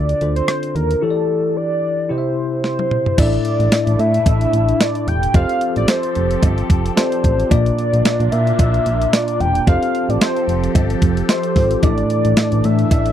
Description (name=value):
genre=1980s-style pop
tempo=111 BPM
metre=4/4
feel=swing 55% on 16ths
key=unclear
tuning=A4 = 440 Hz
part: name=warm velvety synth lead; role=melody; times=0.0-13.1 s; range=A4 to G5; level=-20 LUFS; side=equal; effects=chorus, slapback echo
part: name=tine electric piano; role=accompaniment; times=0.0-13.1 s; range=A2 to E5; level=-21 LUFS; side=left 2 dB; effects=slow stereo tremolo
part: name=solid FM bass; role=bass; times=0.0-13.1 s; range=E1 to Bb2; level=-19 LUFS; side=equal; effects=none
part: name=clean 12-bit digital drum machine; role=drums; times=0.1-13.1 s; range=crash cymbal, hi-hat, kick drum, rim click, snare drum, tambourine, toms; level=-16 LUFS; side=equal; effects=none
part: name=phased analog pad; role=sustained chords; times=3.7-13.1 s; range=E3 to A4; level=-25 LUFS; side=right 1 dB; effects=phaser, chorus
part: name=cowbell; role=percussion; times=3.2-13.1 s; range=none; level=-30 LUFS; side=right 14 dB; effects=none
room=little or no reverb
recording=dry, close 1970s-style studio recording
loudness=-14 LUFS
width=side -10 dB against mid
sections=0.0-3.2 A section; 3.2-13.1 B section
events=drum fill 2.6-3.2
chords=0.0 Dm; 1.0 A7sus4/E; 2.1 C; 3.2 Asus4; 5.3 Fadd9; 7.5 Bb; 9.7 Fadd9; 11.8 Asus4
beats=0.48 | 1.02 1.56 2.10 2.64 | 3.19 3.73 4.27 4.81 | 5.35 5.89 6.43 6.97 | 7.51 8.05 8.59 9.13 | 9.67 10.21 10.75 11.29 | 11.83 12.37 12.91